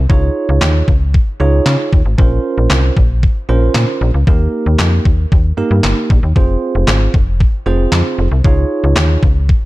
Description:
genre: dance-pop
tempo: 115 BPM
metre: 4/4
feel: straight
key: unclear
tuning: A4 = 440 Hz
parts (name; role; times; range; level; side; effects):
- slap-like FM bass; bass; 0.0-9.5 s; F1 to Db3; -13 LUFS; equal; sidechain pumping
- bell-like tine electric piano; accompaniment; 0.1-9.3 s; Bb3 to Db5; -18 LUFS; right 4 dB; sidechain pumping
- detuned 8-bit digital drum machine; drums; 0.1-9.6 s; handclaps, kick drum, snare drum; -13 LUFS; equal; none
room: little or no reverb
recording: dark, warm production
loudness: -11 LUFS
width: side -18 dB against mid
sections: 0.0-9.7 A section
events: none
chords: 0.1 Dbadd9; 2.2 Bbmadd9; 4.3 Eb; 6.4 Fm; 8.4 Dbadd9

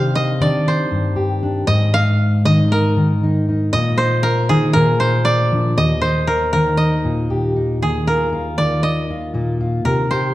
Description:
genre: acoustic folk duo or small band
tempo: 118 BPM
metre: 4/4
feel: straight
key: Eb major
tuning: A4 = 440 Hz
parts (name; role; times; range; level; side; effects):
- koto; melody; 0.0-10.3 s; Ab4 to F5; -19 LUFS; right 1 dB; none
- fingerpicked steel-string acoustic guitar; accompaniment; 0.0-10.3 s; Eb2 to G4; -17 LUFS; equal; none
room: wet recital hall reverb, RT60 1.5 s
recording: dark, warm production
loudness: -15 LUFS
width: side -15 dB against mid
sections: 0.0-7.8 A section; 7.8-10.3 B section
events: none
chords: 0.0 Cmadd9; 1.7 Absus2; 3.7 Eb5/Bb; 4.7 Bb; 5.8 Eb; 7.8 Ebsus2

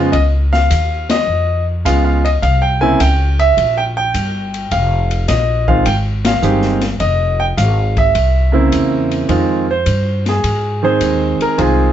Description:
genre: jazz piano trio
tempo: 105 BPM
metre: 4/4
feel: swing 69% on 8ths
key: F minor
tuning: A4 = 439 Hz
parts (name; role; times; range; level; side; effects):
- clear grand piano; melody; 0.0-11.9 s; Db3 to Ab5; -15 LUFS; right 2 dB; none
- upright bass; bass; 0.0-11.9 s; F1 to Ab2; -16 LUFS; equal; none
- open jazz drum kit; drums; 0.1-11.8 s; hi-hat, kick drum, ride cymbal, snare drum; -23 LUFS; left 2 dB; none
room: moderate studio reverb, RT60 0.6 s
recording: heard from further back in the room, nothing above 7.8 kHz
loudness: -12 LUFS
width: side -10 dB against mid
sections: 0.0-9.3 A section; 9.3-11.9 B section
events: band accent 1.0, 6.1; grand piano solo 9.3-11.9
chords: 0.1 Db; 2.4 C7b9; 4.7 Fm7; 8.1 C7b9; 9.3 Fm7

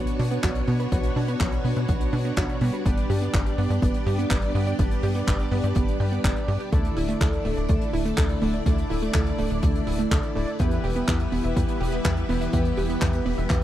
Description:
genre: italo disco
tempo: 124 BPM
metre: 4/4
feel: straight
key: unclear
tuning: A4 = 440 Hz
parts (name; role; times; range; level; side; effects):
- string machine, full ensemble; sustained chords; 0.0-13.6 s; G3 to D5; -31 LUFS; left 1 dB; ensemble chorus
- analog synth brass; stabs; 0.0-13.6 s; B2 to D5; -31 LUFS; left 1 dB; chorus, vintage 12-bit sampler grit, tape echo
- tight sequencer bass; bass; 0.0-13.6 s; D1 to B2; -26 LUFS; equal; none
- damped 70s drum kit; drums; 0.1-13.6 s; handclaps, hi-hat; -34 LUFS; left 1 dB; none
- wide unison pluck; arpeggios; 0.2-13.5 s; A3 to G5; -30 LUFS; right 4 dB; cassette tape, tape echo
- electronic kick drum; drums; 0.4-13.6 s; none; -25 LUFS; equal; none
room: little or no reverb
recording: dry, close 1970s-style studio recording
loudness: -21 LUFS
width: side -12 dB against mid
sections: 0.0-13.6 A section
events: none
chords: 0.0 Bmadd9; 2.9 G; 6.7 Dsus2; 10.6 Em

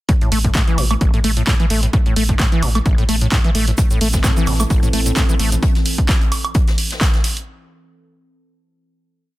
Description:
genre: acid house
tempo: 130 BPM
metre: 4/4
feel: swing 55% on 16ths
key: A minor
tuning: A4 = 442 Hz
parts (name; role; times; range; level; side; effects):
- acid bass, saw; riff; 0.1-5.6 s; A1 to A3; -21 LUFS; equal; overdrive, analog chorus, cassette tape, tape echo
- electronic kick drum; drums; 0.1-7.1 s; none; -16 LUFS; equal; overdrive
- punchy analog drum machine; drums; 0.1-7.5 s; handclaps, hi-hat, woodblock; -22 LUFS; right 2 dB; overdrive
- warm sub bass; bass; 0.3-5.6 s; A1; -19 LUFS; equal; sidechain pumping
- warbly tape-like pad; sustained chords; 4.0-5.6 s; E3 to A4; -28 LUFS; right 1 dB; chorus, built-in reverb, sidechain pumping
- jazz brush drum kit; drums; 3.8-7.4 s; hi-hat, snare drum; -31 LUFS; left 3 dB; sidechain pumping on hats, high-pass filter on hats, soft clipping on snare, high-pass filter on snare, high-pass filter on room
- tube shaker; percussion; 3.8-5.6 s; none; -28 LUFS; right 3 dB; none
room: small room ambience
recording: dense, heavily limited modern master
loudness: -14 LUFS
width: side -17 dB against mid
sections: 0.1-7.5 groove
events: none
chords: 0.1 Am

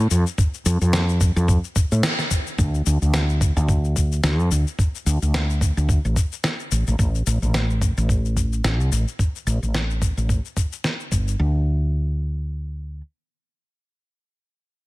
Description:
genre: sunset chillout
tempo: 109 BPM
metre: 4/4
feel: swing 57% on 16ths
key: D minor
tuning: A4 = 440 Hz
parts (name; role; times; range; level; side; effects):
- woody fretless electric bass; bass; 0.0-13.0 s; G1 to A2; -20 LUFS; equal; none
- electronic shaker and snare drum; drums; 0.1-11.4 s; none; -26 LUFS; left 1 dB; studio reverb
- electronic kick drum; drums; 0.4-11.2 s; none; -20 LUFS; equal; studio reverb
room: digital ambience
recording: none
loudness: -19 LUFS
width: side -20 dB against mid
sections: 0.0-2.6 A section; 2.6-11.4 B section; 11.4-13.6 C section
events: band accent 2.0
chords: none

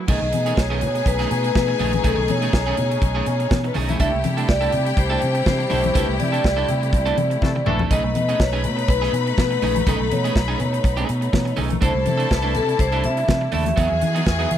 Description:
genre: disco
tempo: 123 BPM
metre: 4/4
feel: straight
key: unclear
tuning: A4 = 441 Hz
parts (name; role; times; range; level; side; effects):
- electric guitar at the edge of break-up; accompaniment; 0.0-14.5 s; D#3 to A4; -27 LUFS; right 7 dB; none
- rich studio string section; sustained chords; 0.0-14.6 s; C3 to G#4; -29 LUFS; left 2 dB; none
- vibraphone with medium hard mallets; melody; 0.1-14.6 s; A4 to E5; -24 LUFS; left 1 dB; tape echo
- clear studio string section; second line; 0.1-14.6 s; B3 to B5; -28 LUFS; left 4 dB; none
- fingered electric bass; bass; 0.1-14.6 s; A#1 to E3; -23 LUFS; equal; none
- modern studio drum kit; drums; 0.1-14.6 s; crash cymbal, hi-hat, kick drum, snare drum, toms; -22 LUFS; equal; none
- congas; percussion; 0.1-14.6 s; none; -30 LUFS; left 8 dB; none
- clear horn section; stabs; 7.4-7.8 s; E3 to A4; -27 LUFS; left 6 dB; none
room: little or no reverb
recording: dry, close 1970s-style studio recording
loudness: -18 LUFS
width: side -10 dB against mid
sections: 0.1-14.6 A section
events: band accent 6.0-7.9; drum fill 7.4-7.9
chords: 0.1 B13; 4.0 C69; 7.9 B13; 11.8 C69; 13.8 Emaj9

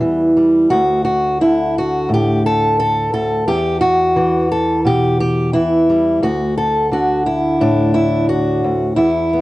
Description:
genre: folk, solo fingerstyle acoustic guitar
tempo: 87 BPM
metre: 4/4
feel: straight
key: D major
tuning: A4 = 440 Hz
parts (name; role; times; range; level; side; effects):
- fingerpicked steel-string acoustic guitar; solo; 0.0-9.4 s; D2 to A4; -13 LUFS; equal; cassette tape
room: small room reverb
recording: home recording on cassette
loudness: -13 LUFS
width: side -17 dB against mid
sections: 0.0-9.4 A section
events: none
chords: 0.0 Em; 0.7 D5; 3.5 Emadd9; 6.2 Dadd9

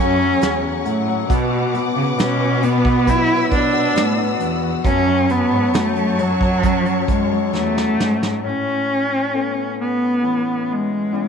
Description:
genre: pop ballad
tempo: 67 BPM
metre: 4/4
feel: straight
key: F# minor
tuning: A4 = 440 Hz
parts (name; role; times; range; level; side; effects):
- rich cello; melody; 0.0-11.3 s; F#3 to E4; -19 LUFS; equal; slapback echo
- warm concert grand piano; accompaniment; 0.0-11.3 s; A2 to F#4; -24 LUFS; left 14 dB; none
- warm studio string section; sustained chords; 0.0-8.4 s; A3 to E6; -26 LUFS; equal; none
- nylon-string guitar; arpeggios; 0.0-9.0 s; F#2 to G#4; -27 LUFS; right 12 dB; slapback echo
- warm studio cello section; bass; 0.0-8.4 s; E2 to C#3; -23 LUFS; right 1 dB; none
- vintage brush drum kit; drums; 0.4-8.4 s; hi-hat, kick drum, snare drum; -22 LUFS; right 1 dB; none
room: moderate spring reverb, RT60 2.2 s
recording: 1960s-style stereo with parts hard left and right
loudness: -16 LUFS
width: side -6 dB against mid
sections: 0.0-8.4 A section; 8.4-11.3 B section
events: drum fill 7.5-8.4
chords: 0.0 F#madd9; 1.3 Bm; 4.8 F#m; 8.4 Aadd9

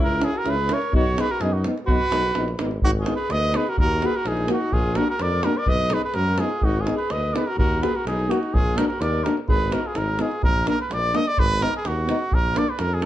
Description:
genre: balkan folk, Balkan brass band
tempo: 126 BPM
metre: 2/4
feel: straight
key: Ab dorian sharp4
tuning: A4 = 445 Hz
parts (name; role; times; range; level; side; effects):
- warm trumpet; melody; 0.0-13.1 s; Gb4 to Eb5; -25 LUFS; right 2 dB; plate reverb
- warm alto saxophone; second line; 0.0-10.4 s; Eb4 to B4; -29 LUFS; left 3 dB; none
- clear euphonium; accompaniment; 0.0-13.1 s; D4 to Gb4; -28 LUFS; left 5 dB; none
- dark euphonium; accompaniment; 0.0-13.1 s; Bb3 to C#4; -30 LUFS; right 4 dB; none
- mellow tuba; bass; 0.0-13.1 s; Ab1 to F#2; -26 LUFS; equal; none
- davul; percussion; 0.2-13.1 s; none; -26 LUFS; equal; none
room: moderate small room reverb, RT60 0.5 s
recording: dark, warm production, lossy compression artefacts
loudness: -20 LUFS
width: side -13 dB against mid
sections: 0.0-2.8 A section; 2.8-10.4 B section; 10.4-13.1 C section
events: none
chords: 0.0 C#m; 0.9 B; 2.8 Abm; 3.8 Ebm; 4.7 Bb; 5.7 B; 6.6 Abm; 7.6 Ebm; 8.5 Bb; 9.5 Abm; 10.4 Bb; 11.4 Abm; 12.3 Bb

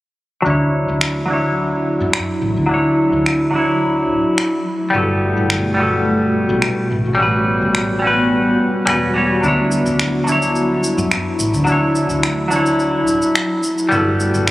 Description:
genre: sunset chillout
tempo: 107 BPM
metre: 4/4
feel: straight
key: D major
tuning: A4 = 436 Hz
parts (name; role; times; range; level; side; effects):
- semi-hollow electric guitar; accompaniment; 0.4-14.5 s; F#3 to C#5; -18 LUFS; equal; auto-pan, low-pass filter, ping-pong delay
- ethereal airy pad; sustained chords; 1.2-14.5 s; B2 to F#4; -19 LUFS; equal; ensemble chorus, built-in reverb
- woody fretless electric bass; bass; 0.5-14.5 s; E1 to F#2; -22 LUFS; equal; ensemble chorus
- electronic finger snaps and shaker; drums; 1.0-14.5 s; none; -21 LUFS; equal; studio reverb
room: moderate lush hall reverb, RT60 2.6 s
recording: recorded on a phone in the room, club reverb, compression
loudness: -14 LUFS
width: side -17 dB against mid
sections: 0.5-14.5 A section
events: none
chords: 0.5 Dmaj9; 4.7 Gmaj9; 6.9 A13; 9.4 Dmaj9; 13.6 Gmaj9

